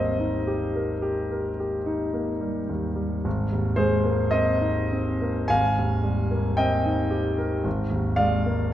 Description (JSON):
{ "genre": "classical, impressionist solo piano", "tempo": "49-57 BPM", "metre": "4/4", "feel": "rubato", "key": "Ab major", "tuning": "A4 = 445 Hz", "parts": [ { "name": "clear concert grand piano", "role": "solo", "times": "0.0-8.7 s", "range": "Ab1 to Ab5", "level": "-22 LUFS", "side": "equal", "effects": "none" } ], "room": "wet scoring stage reverb, RT60 1.8 s", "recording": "none", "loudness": "-22 LUFS", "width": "side -12 dB against mid", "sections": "0.0-8.7 A section", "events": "none", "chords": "0.0 Cm7/Ab; 3.3 Abadd9; 5.5 Fm11/Ab; 7.7 Absus2" }